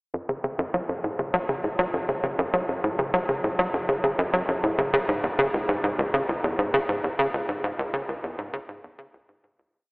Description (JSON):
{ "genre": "ambient", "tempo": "100 BPM", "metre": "4/4", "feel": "straight", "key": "F# minor", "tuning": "A4 = 441 Hz", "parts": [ { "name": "tight sequencer bass", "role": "solo", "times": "0.1-9.7 s", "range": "C#2 to F#3", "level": "-24 LUFS", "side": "equal", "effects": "lush chorus, analog delay" } ], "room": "wet cathedral reverb, RT60 6.6 s", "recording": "in a vast, echoing space, telephone sound", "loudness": "-23 LUFS", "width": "side -33 dB against mid", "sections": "0.1-9.7 A section", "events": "fade-out 6.5-9.7", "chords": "none", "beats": "| 0.14 0.74 1.34 1.94 | 2.54 3.14 3.74 4.34 | 4.94 5.54 6.14 6.74 | 7.34 7.94 8.54 9.14" }